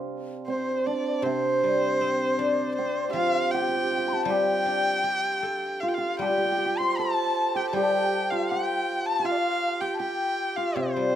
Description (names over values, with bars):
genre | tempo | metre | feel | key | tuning
chinese traditional, Chinese chamber ensemble | 79 BPM | 2/4 | rubato | C zhi mode | A4 = 438 Hz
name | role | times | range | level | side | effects
hammered dulcimer | second line | 0.0-11.2 s | C4 to C5 | -28 LUFS | right 4 dB | none
guzheng | accompaniment | 0.0-11.2 s | C3 to A4 | -29 LUFS | left 3 dB | none
warm erhu | melody | 0.5-11.2 s | C5 to C6 | -28 LUFS | equal | none
bright reedy low xiao | second line | 0.5-11.2 s | C5 to C6 | -30 LUFS | left 5 dB | none
room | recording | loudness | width
light reverb | close, detailed microphones | -23 LUFS | side -10 dB against mid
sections
0.1-11.2 A section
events
none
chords
none